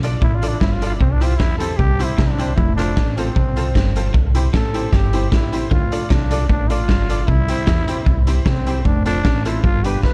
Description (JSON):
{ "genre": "ska", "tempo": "153 BPM", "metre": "4/4", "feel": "straight", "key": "C major", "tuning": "A4 = 440 Hz", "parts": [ { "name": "archtop guitar, miked and amplified", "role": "accompaniment", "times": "0.0-10.0 s", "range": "B3 to D5", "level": "-31 LUFS", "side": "equal", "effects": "plate reverb" }, { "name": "tack piano", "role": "stabs", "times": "0.0-10.0 s", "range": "D4 to D5", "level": "-32 LUFS", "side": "equal", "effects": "tape echo, plate reverb" }, { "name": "upright bass", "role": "bass", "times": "0.0-10.1 s", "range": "F1 to E2", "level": "-22 LUFS", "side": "equal", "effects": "none" }, { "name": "raw garage drum kit", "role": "drums", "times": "0.0-10.1 s", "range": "hi-hat, kick drum, snare drum", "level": "-21 LUFS", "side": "equal", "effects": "none" }, { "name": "growling trombone", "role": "melody", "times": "0.2-10.1 s", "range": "C4 to B4", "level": "-27 LUFS", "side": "equal", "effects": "tape echo, plate reverb" }, { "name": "electric guitar at the edge of break-up", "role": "riff", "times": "0.2-10.1 s", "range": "F2 to E3", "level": "-29 LUFS", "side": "equal", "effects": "none" } ], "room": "little or no reverb", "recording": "dark, warm production", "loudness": "-18 LUFS", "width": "mono", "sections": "0.0-10.1 A section", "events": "trombone solo 0.0-10.1", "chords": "0.0 Dm; 1.0 C; 2.6 F; 4.1 C; 5.7 Dm; 7.3 C; 8.9 F" }